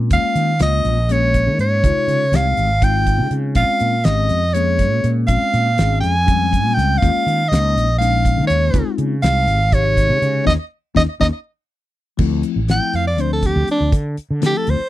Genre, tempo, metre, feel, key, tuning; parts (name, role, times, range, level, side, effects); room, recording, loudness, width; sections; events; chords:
electric jazz fusion; 243 BPM (eighths); 7/8; straight; A4 = 440 Hz
bell-like tine electric piano; accompaniment; 0.0-14.8 s; C3 to Ab4; -23 LUFS; left 9 dB; phaser
fretless electric bass; bass; 0.0-14.8 s; Ab1 to Eb3; -18 LUFS; right 1 dB
bright soprano saxophone; melody; 0.1-14.9 s; D4 to Ab5; -18 LUFS; right 1 dB; slapback echo
damped 70s drum kit; drums; 0.1-14.8 s; crash cymbal, hi-hat, kick drum, snare drum; -19 LUFS; equal
little or no reverb; dry, close 1970s-style studio recording; -14 LUFS; side -14 dB against mid
0.0-12.2 A section; 12.2-14.9 B section
band accent 10.5-12.2; drum fill 11.5-12.2; soprano saxophone solo 12.2-14.9
0.1 Eb9sus4; 1.8 Dbmaj9; 3.6 Bbm7; 7.0 Eb9sus4; 8.7 Dbmaj9; 10.5 Eb5; 11.5 N.C.; 12.2 Dm9